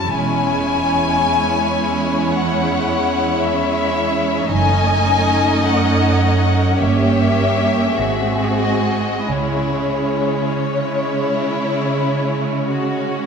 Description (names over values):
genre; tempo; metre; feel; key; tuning
classical, slow romantic movement for string orchestra; 43-57 BPM; 4/4; rubato; C# minor; A4 = 443 Hz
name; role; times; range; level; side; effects
warm studio violin section; melody; 0.0-13.3 s; C#5 to G#5; -21 LUFS; left 5 dB; none
rich studio violin section; second line; 0.0-13.3 s; D#4 to D#5; -22 LUFS; left 1 dB; none
rich studio viola section; accompaniment; 0.0-13.3 s; F#3 to C#4; -21 LUFS; right 2 dB; none
warm studio cello section; bass; 0.0-13.3 s; E2 to C#3; -22 LUFS; right 3 dB; none
rich studio double bass section; bass; 0.1-10.6 s; E1 to C#2; -25 LUFS; right 4 dB; none
room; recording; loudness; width
wet concert hall reverb, RT60 2.5 s; none; -15 LUFS; side -6 dB against mid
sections
0.0-13.3 A section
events
none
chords
0.1 C#m/E; 4.5 D#m7b5/F#; 6.8 Gdim7; 8.0 G#7; 9.3 C#m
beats
| 0.10 1.25 2.34 3.42 | 4.52 5.64 6.80 7.98 | 9.29 10.68 12.03